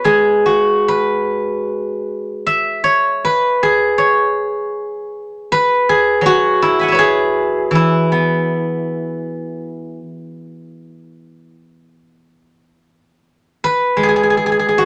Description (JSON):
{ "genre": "chinese traditional, Chinese solo plucked strings", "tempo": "71-81 BPM", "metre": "4/4", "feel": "rubato", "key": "E gong mode", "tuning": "A4 = 440 Hz", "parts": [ { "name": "steel-string zither", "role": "solo", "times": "0.0-14.9 s", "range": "E3 to B5", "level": "-16 LUFS", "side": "equal", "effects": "none" } ], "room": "light reverb", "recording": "none", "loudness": "-16 LUFS", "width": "mono", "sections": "0.0-12.4 A section; 12.4-14.9 B section", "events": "none", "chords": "none", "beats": "| 0.06 0.88 1.68 2.47 | 3.24 4.00 4.75 5.49 | 6.24 6.98 7.73 8.48 | 9.22 9.97 10.75 11.59 | 12.41 13.21 13.99 14.76" }